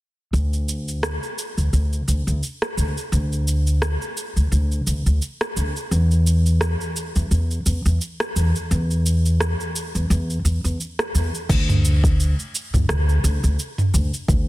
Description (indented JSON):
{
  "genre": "sunset chillout",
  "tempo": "86 BPM",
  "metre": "4/4",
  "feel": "swing 56% on 16ths",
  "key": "unclear",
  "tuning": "A4 = 440 Hz",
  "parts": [
    { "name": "upright bass", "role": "bass", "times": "0.3-14.5 s", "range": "D2 to E2", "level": "-19 LUFS", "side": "equal", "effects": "none" },
    { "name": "smooth R&B drum kit", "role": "drums", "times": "0.3-14.4 s", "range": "crash cymbal, rim click, shaker, toms", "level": "-26 LUFS", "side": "right 1 dB", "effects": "overdrive" },
    { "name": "electronic kick drum", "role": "drums", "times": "11.5-14.4 s", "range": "none", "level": "-20 LUFS", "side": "equal", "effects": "none" }
  ],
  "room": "little or no reverb",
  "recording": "dense, heavily limited modern master",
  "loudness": "-19 LUFS",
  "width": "side -18 dB against mid",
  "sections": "0.3-11.5 A section; 11.5-14.5 B section",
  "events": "none",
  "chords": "none"
}